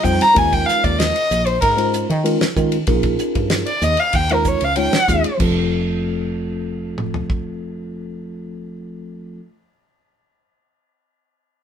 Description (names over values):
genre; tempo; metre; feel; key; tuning
electric jazz fusion; 95 BPM; 4/4; straight; F mixolydian; A4 = 440 Hz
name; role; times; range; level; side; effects
dark violin; melody; 0.0-5.2 s; Bb4 to Bb5; -17 LUFS; equal; none
mellow tine electric piano; accompaniment; 0.0-9.4 s; F3 to Db5; -22 LUFS; equal; slow stereo tremolo
woody fretless electric bass; bass; 0.0-9.4 s; F1 to Eb3; -23 LUFS; equal; none
damped 70s drum kit; drums; 0.0-7.4 s; crash cymbal, hi-hat, kick drum, ride cymbal, snare drum, toms; -22 LUFS; equal; none
room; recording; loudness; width
moderate studio reverb, RT60 0.6 s; band playing live in one room; -16 LUFS; side -8 dB against mid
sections
0.0-5.4 A section; 5.4-7.9 B section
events
violin solo 0.0-5.4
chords
0.4 Eb9sus4; 5.4 F